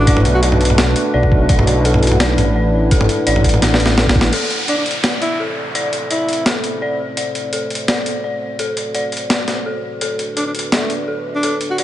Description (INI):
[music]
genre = half-time drum and bass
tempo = 169 BPM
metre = 4/4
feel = half-time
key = A dorian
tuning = A4 = 440 Hz
[part]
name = breathy alto saxophone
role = melody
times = 0.0-0.5, 4.7-6.5, 10.4-11.8 s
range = A3 to F#4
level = -23 LUFS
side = equal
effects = dub echo
[part]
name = dark analog pad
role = sustained chords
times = 0.0-11.8 s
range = A3 to C5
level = -23 LUFS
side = right 1 dB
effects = chorus, sidechain pumping
[part]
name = dark detuned synth bell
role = arpeggios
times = 0.0-11.8 s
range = A4 to D5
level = -22 LUFS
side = left 2 dB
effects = chorus, low-pass filter, dub echo
[part]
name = dark detuned saw bass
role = bass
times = 0.0-4.3 s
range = A1 to B1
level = -16 LUFS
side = equal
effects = none
[part]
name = flickering grainy texture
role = texture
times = 0.0-4.3 s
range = F#5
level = -31 LUFS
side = right 4 dB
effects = none
[part]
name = boom bap sampler-style drum kit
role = drums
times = 0.1-11.8 s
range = crash cymbal, hi-hat, snare drum, toms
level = -18 LUFS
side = equal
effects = none
[part]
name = electronic kick drum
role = drums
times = 0.1-4.2 s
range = none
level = -15 LUFS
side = equal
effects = none
[part]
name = downlifter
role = sound effects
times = 4.3-7.2 s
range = none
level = -25 LUFS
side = equal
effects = none
[sound]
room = light reverb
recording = nothing above 10.7 kHz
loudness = -14 LUFS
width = side -13 dB against mid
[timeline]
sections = 0.0-4.3 A section; 4.3-11.8 B section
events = drop 0.0-4.3; drum fill 3.6-4.3; band accent 4.2; filter sweep on analog synth pad 4.3-11.8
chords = 0.0 Bm7; 4.3 Am; 10.0 Bm7